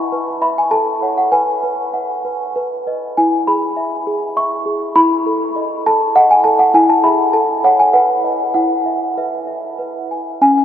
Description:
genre	classical, lullaby for celesta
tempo	99 BPM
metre	3/4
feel	straight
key	E major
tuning	A4 = 440 Hz
part	small celesta	solo	0.0-10.6 s	C#4 to C#6	-13 LUFS	equal	none
room	wet cathedral reverb, RT60 6.9 s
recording	in a vast, echoing space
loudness	-13 LUFS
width	side -10 dB against mid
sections	0.0-10.4 A section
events	none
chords	0.0 E5; 0.7 F#m/A; 1.3 Bsus4; 2.6 B; 3.2 E; 5.0 B7/E; 6.7 E; 7.3 Amaj7; 7.9 B; 8.5 E

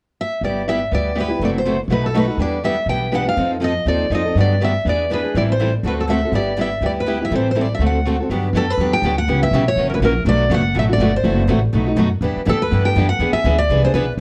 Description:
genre	acoustic string swing (jazz manouche)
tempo	244 BPM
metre	4/4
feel	swing 56% on 8ths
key	G major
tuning	A4 = 440 Hz
part	picked steel-string acoustic guitar	melody	0.2-14.1 s	A4 to G5	-23 LUFS	equal	plate reverb
part	picked steel-string acoustic guitar	accompaniment	0.4-14.1 s	B2 to A4	-24 LUFS	equal	none
part	picked steel-string acoustic guitar	accompaniment	0.4-14.1 s	B2 to B4	-29 LUFS	equal	none
part	upright bass	bass	0.4-14.2 s	F#1 to G2	-22 LUFS	equal	none
room	moderate studio ambience, RT60 0.5 s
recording	worn, warbling old tape, cassette tape, warbly pitch drift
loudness	-18 LUFS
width	mono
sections	0.4-8.3 A section; 8.3-14.2 B section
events	none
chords	0.4 G6; 1.4 F#m7b5; 1.9 B7; 2.4 Em7; 3.4 F7; 4.4 Gmaj7; 4.9 E7; 5.3 Am7; 5.8 D7; 6.3 G6; 7.3 Am7; 7.8 D7; 8.3 Gmaj7; 9.3 C#m7b5; 9.8 F#7; 10.3 Bm7; 11.2 F#m7b5; 11.7 B7; 12.2 Em7; 13.2 E7

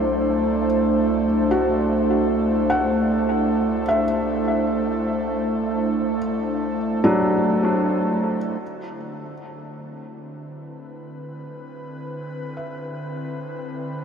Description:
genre	ambient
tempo	76 BPM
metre	4/4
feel	straight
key	C lydian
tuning	A4 = 444 Hz
part	airy breathy pad	sustained chords	0.0-14.0 s	D3 to C5	-22 LUFS	right 1 dB	chorus
part	felt-muted upright piano	arpeggios	0.0-14.0 s	F#3 to F#5	-24 LUFS	equal	tape echo
part	deep rumbling drone	bass	0.0-8.6 s	C2	-36 LUFS	equal	built-in reverb
room	wet huge ambient reverb, RT60 8.7 s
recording	none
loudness	-19 LUFS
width	side -7 dB against mid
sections	0.0-8.6 A section; 8.6-14.0 B section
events	fade-out on synth drone 0.0-8.6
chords	0.0 C69; 8.6 Cmaj9

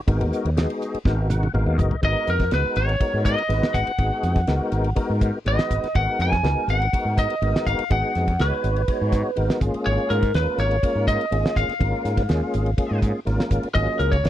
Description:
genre	electric jazz fusion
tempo	123 BPM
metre	4/4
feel	straight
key	G# dorian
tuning	A4 = 443 Hz
part	tonewheel organ	accompaniment	0.1-14.3 s	F#3 to F#5	-27 LUFS	left 2 dB	slow rotary speaker, chorus vibrato
part	fretless electric bass	bass	0.1-14.3 s	F#1 to G#2	-23 LUFS	equal	none
part	damped 70s drum kit	drums	0.1-14.3 s	hi-hat, kick drum, ride cymbal, snare drum, toms	-23 LUFS	equal	none
part	lightly driven lead guitar	melody	2.0-14.3 s	A#4 to G#5	-24 LUFS	equal	slapback echo
room	little or no reverb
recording	dry, close 1970s-style studio recording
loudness	-19 LUFS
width	side -12 dB against mid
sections	0.0-2.0 A section; 2.0-14.3 B section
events	drum fill 1.0-2.0; tonewheel organ fill 1.0-2.0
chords	0.0 G#m9; 2.0 G#m7; 9.6 A#m7/G#; 13.8 G#13sus4

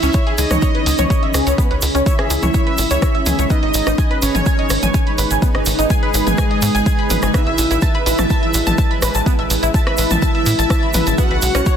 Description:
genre	melodic techno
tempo	125 BPM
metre	4/4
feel	straight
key	C# minor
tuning	A4 = 440 Hz
part	wide unison lead	melody	0.0-11.8 s	G#3 to F#4	-23 LUFS	equal	sidechain pumping, dub echo
part	soft supersaw	second line	0.0-11.8 s	G#4 to F#5	-26 LUFS	right 2 dB	sidechain pumping, digital delay
part	tight sequenced synth	arpeggios	0.0-11.7 s	B3 to A6	-22 LUFS	equal	chorus, sidechain pumping, digital delay
part	tight sequencer bass	bass	0.0-11.6 s	G#1 to A2	-20 LUFS	equal	sidechain pumping
part	analog drone	drone	0.3-11.8 s	C#3 to G#3	-31 LUFS	left 1 dB	chorus, sidechain pumping
part	punchy analog drum machine	drums	0.0-11.8 s	hi-hat, rim click, toms	-23 LUFS	equal	soft clipping on snare
part	egg shaker	percussion	0.0-11.8 s	none	-26 LUFS	right 5 dB	none
part	granular cloud pad	texture	0.0-11.8 s	C#4 to B5	-26 LUFS	right 1 dB	built-in reverb, sidechain pumping
part	electronic kick drum	drums	0.1-11.8 s	none	-17 LUFS	equal	overdrive
room	little or no reverb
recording	dense, heavily limited modern master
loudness	-14 LUFS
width	side -8 dB against mid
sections	0.0-11.8 A section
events	none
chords	0.0 C#m7; 3.5 G#m; 7.3 Asus2; 11.2 Badd9

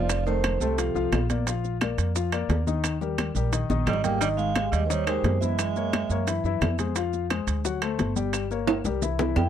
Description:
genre	Afro-Cuban jazz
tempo	175 BPM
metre	4/4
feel	straight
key	F minor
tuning	A4 = 440 Hz
part	vibraphone with medium mallets	melody	0.0-1.1, 3.9-6.4, 9.4-9.5 s	A4 to G5	-29 LUFS	right 5 dB	none
part	breathy tenor saxophone	second line	0.0-1.1, 3.9-6.4 s	C3 to Bb3	-31 LUFS	right 11 dB	none
part	warm grand piano	accompaniment	0.0-9.5 s	Eb3 to G5	-29 LUFS	left 10 dB	none
part	upright bass	bass	0.0-9.5 s	F1 to Gb2	-28 LUFS	right 1 dB	none
part	bongos	percussion	0.1-9.4 s	none	-32 LUFS	left 5 dB	none
part	claves	percussion	0.1-9.5 s	none	-39 LUFS	left 7 dB	none
part	congas	percussion	0.1-9.5 s	none	-32 LUFS	right 1 dB	none
part	maracas	percussion	0.1-9.5 s	none	-37 LUFS	right 25 dB	none
part	timbales	percussion	0.1-9.4 s	none	-31 LUFS	right 10 dB	none
room	little or no reverb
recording	dry, close 1970s-style studio recording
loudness	-23 LUFS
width	side -9 dB against mid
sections	0.0-9.5 A section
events	drum fill 3.7-4.2, 8.7-9.5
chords	0.1 F; 1.5 Bb; 2.8 Eb; 4.2 Abmaj7; 5.6 Gb9; 7.0 Fm; 7.7 D7; 8.3 Gdim

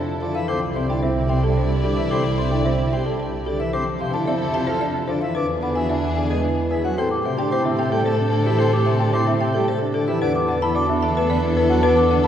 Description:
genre	classical, minimalist pattern music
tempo	111 BPM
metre	3/4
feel	straight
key	C major, A dorian from 7.0 s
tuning	A4 = 440 Hz
part	folk marimba with medium hard mallets	melody	0.0-12.3 s	A4 to A5	-25 LUFS	left 3 dB	none
part	rich chamber violin section	sustained chords	0.0-12.3 s	C4 to D5	-29 LUFS	left 3 dB	none
part	warm grand piano	arpeggios	0.0-12.3 s	C4 to B4	-26 LUFS	right 3 dB	none
part	warm chamber double bass section	bass	0.0-12.3 s	C2 to A2	-23 LUFS	right 2 dB	none
part	pipe organ, plenum	accompaniment	0.2-12.3 s	C3 to D4	-25 LUFS	left 1 dB	none
part	large celesta	arpeggios	0.5-12.3 s	E5 to D6	-29 LUFS	left 1 dB	none
room	wet concert hall reverb, RT60 2.4 s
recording	heard from further back in the room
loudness	-18 LUFS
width	side -9 dB against mid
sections	0.0-7.0 A section; 7.0-12.3 B section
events	none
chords	0.5 Cadd9; 3.7 Fmaj7; 5.4 E7; 7.0 Am7; 10.2 E7sus4

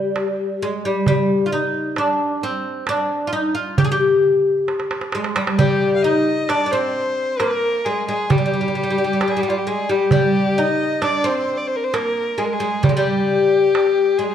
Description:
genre	Arabic maqam ensemble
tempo	133 BPM (eighths)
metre	10/8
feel	straight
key	G maqam kurd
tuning	A4 = 440 Hz
part	oud	melody	0.0-14.3 s	G3 to Ab4	-18 LUFS	left 1 dB	none
part	darbuka	percussion	0.2-14.3 s	none	-23 LUFS	right 3 dB	none
part	rich violin	second line	5.6-14.3 s	F4 to F5	-22 LUFS	left 2 dB	none
room	moderate recital hall reverb, RT60 1.5 s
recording	dark, warm production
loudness	-17 LUFS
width	side -9 dB against mid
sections	0.0-14.3 A section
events	drum fill 4.7-5.6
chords	none

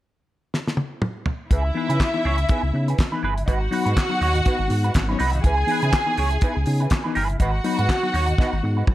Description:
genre	disco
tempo	122 BPM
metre	4/4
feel	swing 56% on 16ths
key	C# minor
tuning	A4 = 440 Hz
part	damped 70s drum kit	drums	0.5-8.9 s	handclaps, hi-hat, kick drum, snare drum, toms	-23 LUFS	equal	gated reverb
part	warm studio string section	second line	1.5-8.9 s	C#4 to G#5	-25 LUFS	equal	none
part	mellow tine electric piano	accompaniment	1.5-8.8 s	G#2 to D#4	-28 LUFS	left 4 dB	medium stereo tremolo
part	semi-hollow electric guitar	accompaniment	1.5-8.9 s	D#4 to C#5	-28 LUFS	right 4 dB	wah, analog chorus
part	sub bass with octave	bass	1.5-8.9 s	G1 to C#3	-22 LUFS	equal	none
room	light reverb, small room ambience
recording	none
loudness	-19 LUFS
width	side -15 dB against mid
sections	0.0-1.5 A section; 1.5-8.9 B section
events	drum fill 0.5-1.5, 8.4-8.9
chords	0.0 N.C.; 1.5 C#m7; 3.5 G#m7; 5.4 C#m7; 7.4 G#m7

